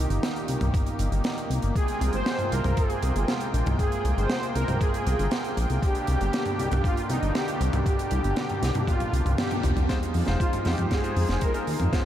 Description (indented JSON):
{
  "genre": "synthwave",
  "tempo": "118 BPM",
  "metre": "4/4",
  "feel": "straight",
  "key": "unclear",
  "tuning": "A4 = 440 Hz",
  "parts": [
    { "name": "brassy analog pad", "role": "sustained chords", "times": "0.0-12.1 s", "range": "Bb2 to G5", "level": "-32 LUFS", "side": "equal", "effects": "chorus, sidechain pumping, shimmer reverb" },
    { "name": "chorused synth bass", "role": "bass", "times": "0.0-11.9 s", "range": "F1 to F2", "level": "-25 LUFS", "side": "equal", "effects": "sidechain pumping" },
    { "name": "tight metal drum kit", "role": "drums", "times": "0.1-12.0 s", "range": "hi-hat, snare drum, toms", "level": "-30 LUFS", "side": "right 1 dB", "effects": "none" },
    { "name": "electronic kick drum", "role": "drums", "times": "0.7-12.0 s", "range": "none", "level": "-26 LUFS", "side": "equal", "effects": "none" },
    { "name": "soft supersaw", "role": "melody", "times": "1.8-11.8 s", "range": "Eb4 to C5", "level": "-30 LUFS", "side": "right 1 dB", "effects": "diffuse ambient delay, shimmer reverb" },
    { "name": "warm electric grand piano", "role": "stabs", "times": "9.9-12.0 s", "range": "Ab3 to C5", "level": "-33 LUFS", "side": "left 3 dB", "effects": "diffuse ambient delay, shimmer reverb" }
  ],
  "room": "moderate huge ambient reverb, RT60 7.7 s",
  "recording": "dreamy mix soaked in reverb",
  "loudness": "-23 LUFS",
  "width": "side -11 dB against mid",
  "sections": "0.0-9.9 A section; 9.9-12.1 B section",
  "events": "drum fill 8.9-9.9, 9.9-12.1; band accent 9.4",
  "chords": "0.0 Eb; 1.8 Fmadd9; 5.8 G; 9.9 Fm7",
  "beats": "0.23 0.74 1.25 | 1.76 2.27 2.77 3.28 | 3.79 4.30 4.81 5.32 | 5.83 6.33 6.84 7.35 | 7.86 8.37 8.88 9.38 | 9.89 10.40 10.91 11.42 | 11.93"
}